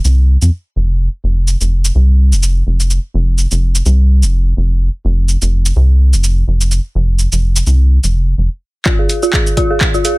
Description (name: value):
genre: minimal techno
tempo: 126 BPM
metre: 4/4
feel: swing 56% on 16ths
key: F minor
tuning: A4 = 441 Hz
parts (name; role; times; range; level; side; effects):
- rubbery square bass; bass; 0.0-8.5 s; F1 to F2; -10 LUFS; equal; sidechain pumping
- punchy analog drum machine; drums; 0.0-10.2 s; cabasa, handclaps, hi-hat; -19 LUFS; right 1 dB; none
- dark detuned synth bell; riff; 8.9-10.1 s; F4 to Ab4; -15 LUFS; right 1 dB; chorus, sidechain pumping, low-pass filter, dub echo
- electronic kick drum; drums; 8.9-9.9 s; none; -15 LUFS; equal; none
room: little or no reverb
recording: none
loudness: -11 LUFS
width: side -22 dB against mid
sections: 0.0-8.9 A section; 8.9-10.2 B section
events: build-up 8.9-10.2; drum fill 8.9-10.2; filter sweep on synth bell 8.9-10.2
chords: 0.0 F5; 8.9 Fm